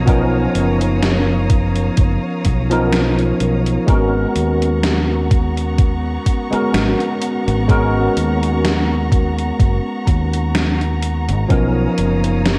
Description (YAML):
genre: vaporwave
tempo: 63 BPM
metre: 4/4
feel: swing 55% on 16ths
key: unclear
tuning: A4 = 442 Hz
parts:
  - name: tine electric piano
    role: accompaniment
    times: 0.0-12.6 s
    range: E#3 to A#4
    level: -21 LUFS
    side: equal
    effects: ensemble chorus, vintage 12-bit sampler grit, tape echo
  - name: rich studio string section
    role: sustained chords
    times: 0.0-12.6 s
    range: B3 to D#6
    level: -30 LUFS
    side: equal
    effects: none
  - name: fingered electric bass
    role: bass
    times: 0.0-12.6 s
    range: F#1 to D#2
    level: -22 LUFS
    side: equal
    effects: none
  - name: electronic kick drum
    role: drums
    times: 0.1-11.7 s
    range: none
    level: -18 LUFS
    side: equal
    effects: overdrive
  - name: gated 80s digital drum machine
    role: drums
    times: 0.1-12.6 s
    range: hi-hat, snare drum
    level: -24 LUFS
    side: equal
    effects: gated reverb, gated reverb snare, overdrive
room: light reverb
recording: cassette tape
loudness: -17 LUFS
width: mono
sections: 0.0-12.6 A section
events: none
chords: 0.0 Bmaj9#11; 3.9 G#m11; 11.5 Bmaj9#11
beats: | 0.07 1.02 1.98 2.93 | 3.88 4.83 5.79 6.74 | 7.69 8.64 9.60 10.55 | 11.50 12.45